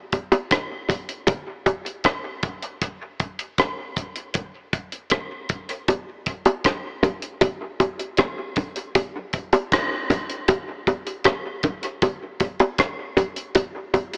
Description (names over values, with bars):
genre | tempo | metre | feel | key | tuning
reggae | 78 BPM | 4/4 | straight | none | none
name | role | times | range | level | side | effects
deep reggae drum kit | drums | 0.1-14.2 s | hi-hat, kick drum, rim click | -26 LUFS | equal | none
bongos | percussion | 0.1-14.1 s | none | -24 LUFS | equal | high-pass filter on perc, dub echo
room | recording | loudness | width
moderate plate reverb, RT60 3.2 s | AM radio sound | -24 LUFS | mono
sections
0.0-14.2 A section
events
filter sweep on drum 0.0-5.9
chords
none